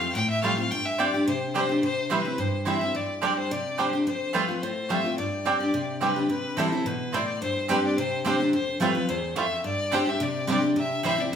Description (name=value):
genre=bluegrass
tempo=215 BPM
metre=4/4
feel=straight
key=G mixolydian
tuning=A4 = 441 Hz
part: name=clear fiddle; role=melody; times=0.0-11.4 s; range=A4 to G5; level=-29 LUFS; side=left 2 dB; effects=none
part: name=picked steel-string acoustic guitar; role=accompaniment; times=0.0-11.4 s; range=E2 to G4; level=-27 LUFS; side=left 1 dB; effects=none
part: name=bluegrass banjo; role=melody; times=0.4-11.1 s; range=G3 to F4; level=-33 LUFS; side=right 3 dB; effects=none
part: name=mandolin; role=stabs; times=0.4-11.1 s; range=A3 to G5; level=-30 LUFS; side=right 4 dB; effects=tape echo
room=wet large studio reverb, RT60 0.9 s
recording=band playing live in one room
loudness=-23 LUFS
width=side -8 dB against mid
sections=0.0-6.3 A section; 6.3-11.4 A section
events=none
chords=0.0 Fadd9; 0.7 Gsus4; 1.8 C; 3.0 Gsus4; 4.1 Fadd9; 5.2 Gsus4; 6.3 C; 7.4 Gsus4; 8.5 Fadd9; 9.7 Gsus4; 10.8 C